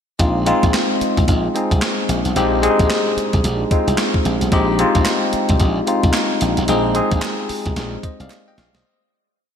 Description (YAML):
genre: R&B, new jack swing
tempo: 111 BPM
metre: 4/4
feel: swing 61% on 16ths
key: unclear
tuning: A4 = 440 Hz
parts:
  - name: bell-like tine electric piano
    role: accompaniment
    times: 0.2-9.0 s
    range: Ab3 to G5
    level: -18 LUFS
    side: left 2 dB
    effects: phaser, slapback echo
  - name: glassy slap bass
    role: bass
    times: 0.2-8.8 s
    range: Bb1 to C2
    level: -20 LUFS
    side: equal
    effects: none
  - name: gated 80s digital drum machine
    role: drums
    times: 0.2-8.8 s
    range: handclaps, hi-hat, kick drum, snare drum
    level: -20 LUFS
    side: equal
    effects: gated reverb, gated reverb snare
  - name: group handclap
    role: percussion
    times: 5.1-8.5 s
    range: none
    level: -36 LUFS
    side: right 7 dB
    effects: none
room: moderate lush hall reverb, RT60 2.6 s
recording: big arena sound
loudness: -15 LUFS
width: side -8 dB against mid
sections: 0.2-8.8 verse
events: fade-out 6.7-8.8; drum fill 8.3-8.8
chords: 0.2 Bb7sus4